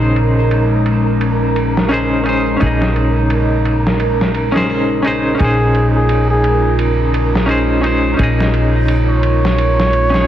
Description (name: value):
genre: trip hop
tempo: 86 BPM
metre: 4/4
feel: swing 56% on 16ths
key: Bb minor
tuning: A4 = 441 Hz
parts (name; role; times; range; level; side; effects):
- semi-hollow electric guitar; accompaniment; 0.0-10.3 s; Db4 to Eb5; -18 LUFS; equal; tremolo, vintage 12-bit sampler grit, tape echo
- warbly tape-like pad; sustained chords; 0.0-10.3 s; Db3 to Bb4; -20 LUFS; right 1 dB; chorus, built-in reverb
- upright bass; bass; 0.0-10.3 s; Bb1; -16 LUFS; equal; none
- wind-like tuned noise texture; texture; 0.0-10.3 s; Bb4; -25 LUFS; right 2 dB; built-in reverb
- dusty soul sampler-style drum kit; drums; 0.2-10.3 s; hi-hat, ride cymbal, snare drum; -22 LUFS; equal; overdrive, low-pass filter on cymbals, low-pass filter on snare, low-pass filter on hats, low-pass filter on room
- trumpet with bucket mute; melody; 5.4-10.3 s; Ab4 to Db5; -19 LUFS; right 1 dB; tape echo
room: light reverb, digital ambience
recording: heavily compressed radio sound, multiband compression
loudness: -12 LUFS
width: side -11 dB against mid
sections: 0.0-10.3 A section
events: none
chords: 0.0 Bbm11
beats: 0.51 1.21 1.91 | 2.61 3.30 4.00 4.70 | 5.40 6.09 6.79 7.49 | 8.19 8.88 9.58